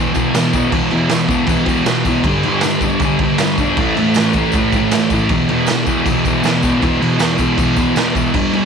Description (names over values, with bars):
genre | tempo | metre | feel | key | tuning
garage rock duo or trio | 158 BPM | 4/4 | straight | E minor | A4 = 439 Hz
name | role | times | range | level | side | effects
thick fuzz guitar | riff | 0.0-8.7 s | E2 to A3 | -14 LUFS | left 1 dB | distortion
tambourine | percussion | 0.1-8.4 s | none | -34 LUFS | left 12 dB | none
raw garage drum kit | drums | 0.2-8.6 s | crash cymbal, kick drum, snare drum | -19 LUFS | right 2 dB | none
room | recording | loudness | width
light reverb, small room ambience | 1960s-style stereo | -13 LUFS | side -6 dB against mid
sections
0.0-8.7 A section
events
none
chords
0.0 E5; 2.2 G5; 3.8 A5; 5.3 E5